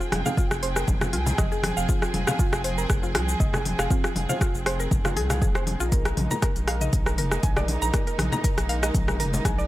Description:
afro house; 119 BPM; 4/4; swing 54% on 16ths; F minor; A4 = 445 Hz
warm studio string section; sustained chords; 0.0-9.7 s; F3 to G5; -32 LUFS; right 2 dB; sidechain pumping
mallet-like synth pluck; arpeggios; 0.0-9.6 s; F4 to Bb5; -31 LUFS; equal; chorus, sidechain pumping, tape echo
deep mellow chord stab; stabs; 0.0-8.4 s; Bb3 to C5; -38 LUFS; left 1 dB; chorus, phaser, vintage 12-bit sampler grit, sidechain pumping, tape echo
afro-pop drum kit; drums; 0.0-9.7 s; hi-hat, rim click, shaker, toms; -29 LUFS; equal
round analog bass; bass; 0.1-9.7 s; F1 to C2; -28 LUFS; equal; tube saturation, sidechain pumping
congas; percussion; 0.1-9.6 s; -31 LUFS; left 2 dB
electronic kick drum; drums; 0.4-9.6 s; -24 LUFS; equal
digital ambience; -22 LUFS; side -16 dB against mid
0.0-9.7 A section
0.0 Fm7; 5.9 Bb7sus4
0.38 0.88 1.38 | 1.89 2.39 2.90 3.40 | 3.90 4.41 4.91 5.42 | 5.92 6.43 6.93 7.43 | 7.94 8.44 8.95 9.45

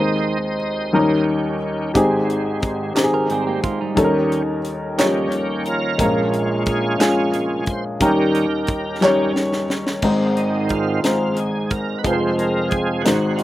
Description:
slow gospel; 59 BPM (dotted quarters); 6/8; straight; Ab major; A4 = 439 Hz
warm upright piano; accompaniment; 0.0-13.4 s; F1 to Db5; -19 LUFS; left 1 dB
bright tonewheel organ; sustained chords; 0.0-13.4 s; Ab2 to Eb5; -23 LUFS; right 2 dB; slow rotary speaker, overdrive, chorus vibrato
tight funk drum kit; drums; 2.0-13.4 s; crash cymbal, hi-hat, kick drum, snare drum; -23 LUFS; equal
group handclap; percussion; 3.0-9.3 s; -29 LUFS; right 6 dB
clean electric guitar; second line; 3.1-4.1 s; G3 to Bb4; -25 LUFS; right 6 dB; spring reverb, slapback echo
mellow French horn section; sustained chords; 10.0-13.4 s; Ab3 to Ab4; -32 LUFS; right 2 dB
little or no reverb; recorded outdoors, with no room sound; -17 LUFS; side -15 dB against mid
0.0-10.0 A section; 10.0-13.4 B section
tonewheel organ solo 0.0-10.0, 10.0-13.4; drum fill 9.0-10.0
0.0 Ab/Eb; 0.9 Eb7; 2.0 Abmaj7; 4.0 Eb7; 6.0 Bbm7; 8.0 Eb7; 10.0 Ab; 12.0 Fm
0.95 | 1.96 2.97 | 3.98 4.98 | 5.99 7.00 | 8.01 9.02 | 10.03 11.04 | 12.05 13.06

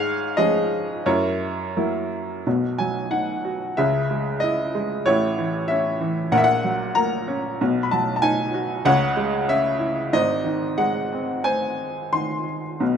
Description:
classical, lyrical solo piano; 93 BPM; 4/4; uneven beats, rubato; A4 = 440 Hz
clear upright piano; solo; 0.0-13.0 s; G#1 to B#5; -20 LUFS; equal
light reverb; close, detailed microphones; -20 LUFS; side -7 dB against mid
0.0-2.5 A section; 2.5-13.0 B section
0.0 Db/Ab; 1.1 Gb7; 2.5 B; 3.8 C#madd9; 5.1 A; 6.3 F#/A#; 7.6 B; 8.9 C#m; 10.1 G#
0.38 1.06 1.77 | 2.46 3.12 3.78 4.42 | 5.06 5.69 6.32 6.96 | 7.60 8.23 8.86 9.49 | 10.14 10.80 11.46 12.13 | 12.81

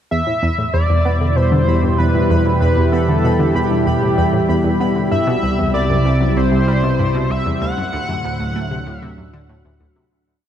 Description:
ambient, sequencer-driven space music; 96 BPM; 4/4; straight; E minor; A4 = 440 Hz
pulse-width lead; melody; 0.1-9.8 s; G4 to F#5; -21 LUFS; equal; chorus, analog delay
lush unison pad; sustained chords; 0.8-10.1 s; A2 to G4; -19 LUFS; equal; chorus
analog pluck; riff; 0.1-10.1 s; C2 to B3; -20 LUFS; right 1 dB; chorus, analog delay
analog drone; bass; 0.6-10.1 s; C2 to E2; -21 LUFS; equal; chorus
pulsing gated texture; texture; 0.1-10.1 s; B5; -31 LUFS; equal; chorus, built-in reverb
wet huge ambient reverb, RT60 8.0 s; -14 LUFS; side -9 dB against mid
0.1-10.1 A section
fade-out 6.8-10.1
0.1 Em; 5.1 C; 7.6 D
| 0.12 0.74 1.37 1.99 | 2.62 3.24 3.87 4.49 | 5.12 5.74 6.37 6.99 | 7.62 8.24 8.87 9.49

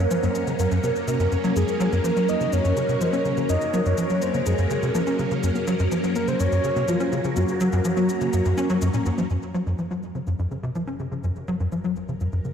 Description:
ambient, sequencer-driven space music; 124 BPM; 4/4; straight; Gb lydian; A4 = 440 Hz
soft octave-layered synth lead; melody; 0.0-9.1 s; F4 to Eb5; -27 LUFS; equal; chorus, ping-pong delay
phased string machine; sustained chords; 0.0-12.5 s; Gb3 to Bb4; -27 LUFS; right 1 dB; ensemble chorus, phaser
tight sequencer bass; riff; 0.0-12.5 s; Gb2 to Db4; -24 LUFS; equal; ensemble chorus, ping-pong delay
cabasa and congas; percussion; 0.1-12.5 s; -36 LUFS; left 3 dB; ping-pong delay
analog drone; bass; 10.9-12.5 s; Gb1; -43 LUFS; equal
wet lush hall reverb, RT60 2.6 s; dreamy mix soaked in reverb; -21 LUFS; side -8 dB against mid
0.0-9.3 A section; 9.3-12.5 B section
0.0 Gb
0.11 0.59 1.08 | 1.56 2.04 2.53 3.01 | 3.50 3.98 4.46 4.95 | 5.43 5.92 6.40 6.88 | 7.37 7.85 8.34 8.82 | 9.30 9.79 10.27 10.75 | 11.24 11.72 12.21

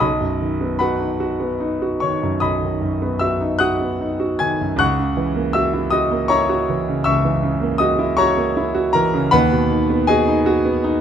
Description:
classical, romantic nocturne for solo piano; 49-54 BPM (dotted quarters); 12/8; rubato; B major; A4 = 442 Hz
clear concert grand piano; solo; 0.0-11.0 s; B1 to G#6; -16 LUFS; equal
light reverb; close, detailed microphones; -16 LUFS; side -8 dB against mid
0.0-11.0 A section
0.0 B; 4.8 F#7/C#; 9.3 B/D#
| 0.03 1.23 2.44 3.62 | 4.80 5.94 7.08 8.20 | 9.34 10.47

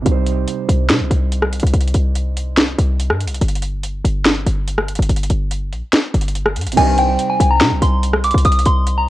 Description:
hip hop, trap; 143 BPM; 4/4; half-time; C minor; A4 = 437 Hz
dark grand piano; accompaniment; 0.0-3.4, 6.7-9.1 s; C3 to C5; -25 LUFS; right 10 dB; low-pass filter, cassette tape
short 808-style bass; bass; 0.0-9.1 s; G1 to C3; -16 LUFS; equal
trap drum kit; drums; 0.1-9.0 s; crash cymbal, hi-hat, rim click, snare drum; -18 LUFS; equal; cassette tape
soft synth bell; melody; 6.8-9.1 s; G5 to Eb6; -16 LUFS; equal; chorus, phaser, low-pass filter, cassette tape
mellow brass ensemble; stabs; 6.8-7.1 s; C2 to Eb3; -23 LUFS; left 8 dB; cassette tape
light reverb; home recording on cassette; -14 LUFS; side -16 dB against mid
0.0-6.8 A section; 6.8-9.1 B section
0.1 Cm; 3.4 N.C.; 6.8 Cm
| 0.06 0.48 0.90 1.32 | 1.74 2.16 2.58 3.00 | 3.41 3.83 4.25 4.67 | 5.09 5.51 5.93 6.35 | 6.77 7.19 7.61 8.03 | 8.45 8.87

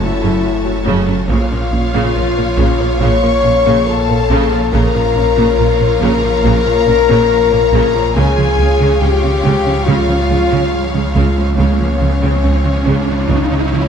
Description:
cinematic, hybrid orchestral and electronic film score; 70 BPM; 4/4; straight; A4 = 440 Hz
clear symphonic violin section; melody; 0.0-13.9 s; C#5 to Db6; -24 LUFS; left 3 dB
clear symphonic violin section; second line; 0.0-13.9 s; C#5 to A5; -24 LUFS; left 3 dB
rich symphonic viola section; accompaniment; 0.0-13.9 s; C#3 to F#4; -22 LUFS; right 2 dB
dark analog pad; sustained chords; 0.0-13.9 s; F3 to C#5; -25 LUFS; left 1 dB
mellow French horn section; sustained chords; 0.0-13.9 s; C#4 to Db5; -16 LUFS; left 6 dB
soft round pluck; arpeggios; 0.0-13.9 s; C#3 to Bb4; -24 LUFS; left 3 dB
rich symphonic cello section; bass; 0.0-13.8 s; F#2 to C#3; -20 LUFS; right 3 dB
rich symphonic double bass section; bass; 0.0-13.8 s; F#1 to C#2; -19 LUFS; right 3 dB
snarling distorted saw bass; bass; 0.0-13.9 s; F#1 to C#2; -19 LUFS; right 1 dB; distortion
riser; sound effects; 9.9-13.9 s; -22 LUFS; right 3 dB
wet scoring stage reverb, RT60 1.6 s; dark, warm production; -11 LUFS; side -7 dB against mid
0.0-13.9 A section
riser 9.9-13.9
0.0 F#m; 1.3 Bbm; 8.2 C#
0.44 | 1.30 2.15 3.01 3.87 | 4.72 5.58 6.44 7.30 | 8.15 9.01 9.87 10.72 | 11.58 12.44 13.30

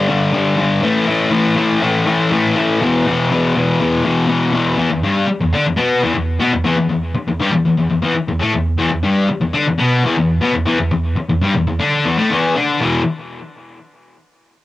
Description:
rock; 120 BPM; 4/4; straight; A4 = 440 Hz
fuzz guitar; solo; 0.0-13.0 s; E2 to D4; -14 LUFS; left 2 dB; distortion, cassette tape, analog delay
light reverb; home recording on cassette; -14 LUFS; side -16 dB against mid
0.0-4.8 A section; 4.8-12.8 B section; 12.8-14.6 C section
0.0 G5; 0.8 A5; 2.8 E5
0.34 | 0.83 1.32 1.81 2.31 | 2.80 3.29 3.79 4.29 | 4.78 5.28 5.78 6.27 | 6.77 7.27 7.77 8.27 | 8.77 9.28 9.78 10.28 | 10.78 11.29 11.79 12.29 | 12.79

